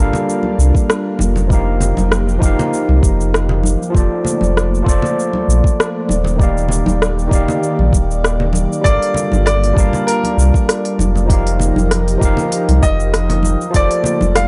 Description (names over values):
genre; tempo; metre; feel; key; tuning
sunset chillout; 98 BPM; 4/4; swing 54% on 16ths; unclear; A4 = 441 Hz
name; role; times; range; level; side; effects
overdriven tine electric piano; accompaniment; 0.0-14.5 s; Eb3 to A5; -22 LUFS; equal; tape echo
airy breathy pad; sustained chords; 0.0-14.5 s; Eb3 to D5; -25 LUFS; equal; chorus
warm sub bass; bass; 0.0-14.5 s; Eb1 to C2; -18 LUFS; equal; none
smooth R&B drum kit; drums; 0.1-14.5 s; cabasa, hi-hat, rim click; -23 LUFS; equal; overdrive
congas; percussion; 0.1-14.3 s; none; -25 LUFS; equal; none
electronic kick drum; drums; 0.7-13.9 s; none; -16 LUFS; equal; overdrive
bright grand piano; melody; 8.8-14.5 s; Bb4 to F5; -22 LUFS; equal; analog delay
room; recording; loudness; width
little or no reverb; dry, gritty hardware recording, nothing above 11.0 kHz; -15 LUFS; mono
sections
0.0-14.5 A section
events
none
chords
0.0 Gm7; 1.5 F9sus4; 4.0 Bbmaj7/F; 6.4 Ebmaj7; 8.8 Gm7; 11.3 F9sus4; 13.7 Bbmaj7/F